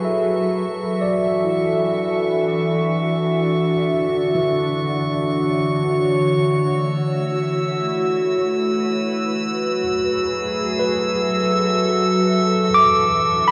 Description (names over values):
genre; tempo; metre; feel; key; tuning
ambient; 62 BPM; 3/4; straight; unclear; A4 = 439 Hz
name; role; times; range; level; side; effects
glassy FM pad; sustained chords; 0.0-13.5 s; D3 to E5; -21 LUFS; equal; ensemble chorus, built-in reverb
tine electric piano; arpeggios; 0.0-13.5 s; E3 to D6; -25 LUFS; equal; tape echo
drifting glass-harmonics texture; texture; 0.0-13.5 s; C#6 to E6; -29 LUFS; equal; chorus, built-in reverb
room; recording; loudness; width
wet scoring stage reverb, RT60 1.8 s; nothing above 10.4 kHz; -20 LUFS; mono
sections
0.0-13.5 A section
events
fade-in on tine electric piano 0.0-13.5; fade-in on synth texture 0.0-13.5; filter sweep on ambient pad 0.0-13.5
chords
0.0 F#m11; 0.8 E7sus4; 3.7 Dmaj7; 6.7 A69; 9.6 F#m11; 12.5 E7sus4